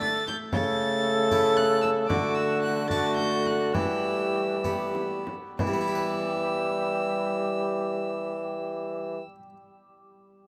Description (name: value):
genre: classical, renaissance-style consort dance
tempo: 61-78 BPM (dotted quarters)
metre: 6/8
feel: straight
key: E dorian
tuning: A4 = 440 Hz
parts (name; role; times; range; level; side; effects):
- rich violin; melody; 0.0-9.2 s; D6 to A6; -36 LUFS; equal; none
- mellow cor anglais; second line; 0.0-9.2 s; F#4 to A4; -34 LUFS; equal; none
- harpsichord; accompaniment; 0.0-9.6 s; C#3 to B4; -37 LUFS; equal; none
- mellow trombone; accompaniment; 0.0-9.2 s; G3 to A3; -33 LUFS; equal; none
- warm bassoon; bass; 0.0-9.2 s; C#3 to E3; -32 LUFS; equal; none
- frame drum; percussion; 0.0-5.9 s; none; -38 LUFS; equal; none
room: wet cathedral reverb, RT60 5.5 s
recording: in a vast, echoing space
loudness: -27 LUFS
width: mono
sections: 0.0-5.6 A section; 5.6-9.5 B section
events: slowing down 1.3-5.6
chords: 0.0 D5; 0.5 A/C#; 2.1 D; 3.7 Em